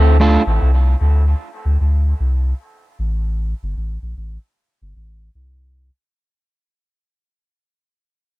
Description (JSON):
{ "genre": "reggae", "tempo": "76 BPM", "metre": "4/4", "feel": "swing 62% on 16ths", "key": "unclear", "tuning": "A4 = 435 Hz", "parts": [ { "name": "soft dub sub bass", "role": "bass", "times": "0.0-5.9 s", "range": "G1 to D2", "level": "-15 LUFS", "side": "equal", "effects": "none" } ], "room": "little or no reverb", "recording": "none", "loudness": "-15 LUFS", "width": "side -18 dB against mid", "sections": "0.0-6.1 A section", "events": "fade-out 0.0-6.1", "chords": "none", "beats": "0.60 1.39 2.18 | 2.97 3.76 4.55 5.34" }